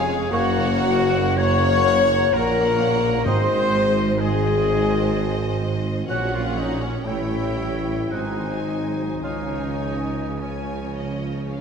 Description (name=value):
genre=classical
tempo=52-65 BPM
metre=3/4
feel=rubato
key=Db major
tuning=A4 = 441 Hz
part: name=rich studio violin section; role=melody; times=0.0-11.6 s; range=Eb5 to Ab5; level=-34 LUFS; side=left 3 dB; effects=none
part: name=mellow flute section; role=second line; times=0.0-11.6 s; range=Db5 to Db6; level=-31 LUFS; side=left 2 dB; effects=none
part: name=rich studio violin section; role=second line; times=0.0-11.6 s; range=C5 to Db5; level=-34 LUFS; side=left 3 dB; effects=none
part: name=warm clarinet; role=second line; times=0.0-11.6 s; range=Db4 to Db5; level=-32 LUFS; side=left 3 dB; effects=none
part: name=rich studio viola section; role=accompaniment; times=0.0-11.6 s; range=F3 to Db4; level=-32 LUFS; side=left 1 dB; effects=none
part: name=mellow French horn section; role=sustained chords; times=0.0-11.6 s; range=Db4 to Db5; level=-26 LUFS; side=left 5 dB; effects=none
part: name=warm trombone section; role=sustained chords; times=0.0-11.6 s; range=Db3 to Db4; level=-32 LUFS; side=right 3 dB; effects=none
part: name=concert harp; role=arpeggios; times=0.0-11.6 s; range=F2 to Db6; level=-33 LUFS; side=left 6 dB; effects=none
part: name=bright trumpet section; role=stabs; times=0.0-11.6 s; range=Db4 to Db5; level=-28 LUFS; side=equal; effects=none
part: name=rich studio cello section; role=bass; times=0.0-11.6 s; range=F2 to Db3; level=-29 LUFS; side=right 3 dB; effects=none
part: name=warm studio double bass section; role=bass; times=0.0-11.6 s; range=F1 to Db2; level=-29 LUFS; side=right 3 dB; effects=none
part: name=warm tuba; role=bass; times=0.0-11.6 s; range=F1 to Db2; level=-29 LUFS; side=right 4 dB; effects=none
part: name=warm oboe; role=second line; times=0.3-9.7 s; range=Db5 to G5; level=-33 LUFS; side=right 3 dB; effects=none
part: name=mellow bassoon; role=accompaniment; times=0.3-9.7 s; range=Bb3 to C#4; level=-34 LUFS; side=right 2 dB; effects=none
part: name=timpani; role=percussion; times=3.3-4.6 s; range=Ab2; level=-29 LUFS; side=equal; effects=none
room=wet scoring stage reverb, RT60 2.1 s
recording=none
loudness=-19 LUFS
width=side -6 dB against mid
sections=0.0-11.6 A section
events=none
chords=0.3 Gb; 3.3 Ab; 6.1 Gb/Bb; 7.1 A7; 8.1 Ab7; 9.2 Db